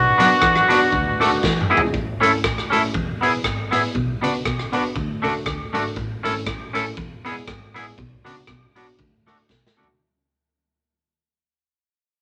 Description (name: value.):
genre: ska.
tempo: 119 BPM.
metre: 4/4.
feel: swing 56% on 8ths.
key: A major.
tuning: A4 = 440 Hz.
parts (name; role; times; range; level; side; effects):
clear horn section; melody; 0.0-1.7 s; B3 to F#4; -19 LUFS; equal; none.
semi-hollow electric guitar; riff; 0.0-9.9 s; E2 to F#3; -31 LUFS; equal; dub echo.
upright bass; bass; 0.0-10.0 s; E1 to F#2; -36 LUFS; equal; none.
twangy electric guitar; accompaniment; 0.2-9.9 s; A3 to A4; -22 LUFS; equal; none.
dark upright piano; stabs; 0.2-9.9 s; F#3 to B4; -29 LUFS; equal; none.
raw garage drum kit; drums; 0.2-10.0 s; hi-hat, kick drum, rim click, snare drum, toms; -28 LUFS; equal; none.
room: moderate small room reverb, RT60 0.5 s.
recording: none.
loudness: -20 LUFS.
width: mono.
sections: 0.0-1.9 A section; 1.9-10.0 B section.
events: drum fill 1.4-1.9, 9.5-10.0; fade-out 1.9-10.0.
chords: 0.0 Bm; 0.9 D; 1.4 E; 1.9 A; 2.9 E; 4.0 Bm; 5.0 D; 6.0 A; 7.0 E; 8.0 Bm; 9.0 D.